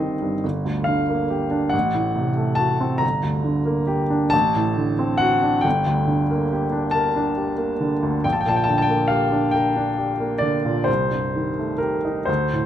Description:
classical, romantic nocturne for solo piano; 46 BPM (dotted quarters); 6/8; rubato; G minor; A4 = 440 Hz
clear baby grand piano; solo; 0.0-12.7 s; G1 to Bb5; -19 LUFS; equal
light reverb; close, detailed microphones; -19 LUFS; side -10 dB against mid
0.0-12.7 A section
0.4 Gm; 1.7 F#dim/A; 3.0 Gm; 4.3 D7/A; 5.7 Gm; 8.2 Gm/Bb; 10.9 Am7b5/C
| 0.43 1.74 | 3.03 4.33 | 5.65 6.95 | 8.24 9.54 | 10.88 12.28

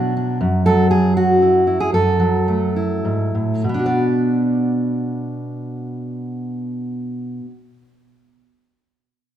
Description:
folk, solo fingerstyle acoustic guitar; 96-123 BPM; 3/4; straight; B dorian; A4 = 439 Hz
fingerpicked steel-string acoustic guitar; solo; 0.0-7.6 s; F#2 to D5; -17 LUFS; right 1 dB
moderate scoring stage reverb, RT60 1.9 s; minimal, uncompressed stereo recording; -16 LUFS; side -10 dB against mid
0.0-3.7 A section; 3.7-7.3 B section
slowing down 0.4-3.7
0.4 F#m7; 3.7 Bm
| 0.40 0.90 1.40 | 1.92 2.47 3.04 | 3.65 4.27 4.88 | 5.49 6.10 6.71

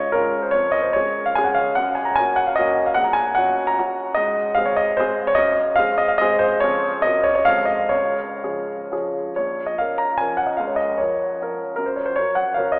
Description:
classical, romantic triple-time dance for piano with dotted rhythms; 114-166 BPM; 3/4; rubato; Db major, Bb minor from 9.4 s; A4 = 440 Hz
warm grand piano; solo; 0.0-12.8 s; Bb1 to Bb5; -17 LUFS; equal
wet cathedral reverb, RT60 4.9 s; recorded in a church or concert hall, telephone sound; -17 LUFS; side -27 dB against mid
0.0-9.4 A section; 9.4-12.8 B section
0.0 Db; 0.5 Db/F; 1.8 Gb; 3.0 Gb/Bb; 4.2 Ab; 5.4 Ab7/Gb; 6.6 Db/F; 7.0 Gb; 7.5 Ab7b9; 7.9 Db; 9.4 Bbm; 10.6 Bbm/Db; 11.8 Gb
0.13 | 0.54 0.95 1.38 | 1.78 2.19 2.59 | 2.97 3.37 3.78 | 4.17 4.58 5.00 | 5.39 5.79 6.22 | 6.64 7.05 7.48 | 7.92 8.43 8.92 | 9.38 9.79 10.20 | 10.58 10.99 11.41 | 11.78 12.18 12.57

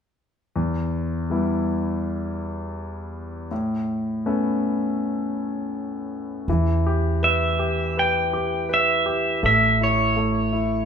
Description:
acoustic folk-pop ballad; 81 BPM; 4/4; straight; E dorian; A4 = 440 Hz
clear concert grand piano; accompaniment; 0.6-10.9 s; E2 to B4; -24 LUFS; left 1 dB
upright bass; bass; 6.5-10.9 s; A1 to E2; -25 LUFS; right 1 dB
pedal steel guitar; melody; 7.2-10.9 s; C#5 to G5; -20 LUFS; right 1 dB
moderate large studio reverb, RT60 1.0 s; band playing live in one room; -20 LUFS; side -7 dB against mid
0.6-6.5 A section; 6.5-10.9 B section
0.6 Em; 3.5 Aadd9; 6.5 Em; 9.4 A
| 0.56 1.30 2.04 2.77 | 3.51 4.24 4.98 5.73 | 6.48 7.22 7.96 8.70 | 9.43 10.17

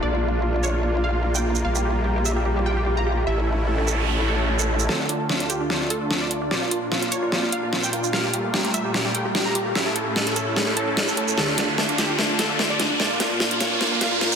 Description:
heavy wobble dubstep; 148 BPM; 4/4; swing 54% on 16ths, half-time; D harmonic minor; A4 = 440 Hz
wide unison pluck; melody; 0.0-14.4 s; D4 to Bb5; -27 LUFS; right 1 dB; cassette tape, ping-pong delay
supersaw chords; sustained chords; 0.0-14.4 s; D2 to F4; -28 LUFS; right 1 dB; low-pass filter
growl bass; bass; 0.0-4.9 s; A1 to Bb1; -23 LUFS; equal; chorus, overdrive
downlifter, noise sweep and riser; sound effects; 0.0-14.4 s; -29 LUFS; right 1 dB
warbly tape-like pad; texture; 0.0-14.4 s; E4 to Bb5; -31 LUFS; equal; chorus, built-in reverb
dubstep drum kit; drums; 0.6-14.4 s; hi-hat, shaker, snare drum; -24 LUFS; equal; high-pass filter on snare, high-pass filter on hats, high-pass filter on perc, high-pass filter on toms, high-pass filter on cymbals, high-pass filter on room
moderate digital room reverb, RT60 1.1 s; dense, heavily limited modern master, high-pass filter; -20 LUFS; side -7 dB against mid
0.0-4.9 A section; 4.9-14.4 B section
noise sweep 3.5-4.9; build-up 4.9-14.4; drum fill 4.9-14.4; riser 4.9-14.4; filter sweep on supersaw synth 4.9-14.4
0.0 Bb; 1.6 Gm7/Bb; 3.3 A; 4.9 Dm; 6.5 Bb; 8.1 Gm7/Bb; 9.8 A; 11.4 Dm; 13.0 Bb
| 0.03 0.43 0.84 1.24 | 1.65 2.05 2.46 2.86 | 3.27 3.67 4.08 4.48 | 4.89 5.29 5.70 6.11 | 6.51 6.92 7.32 7.73 | 8.13 8.54 8.94 9.35 | 9.76 10.16 10.56 10.97 | 11.38 11.78 12.19 12.59 | 13.00 13.40 13.81 14.21

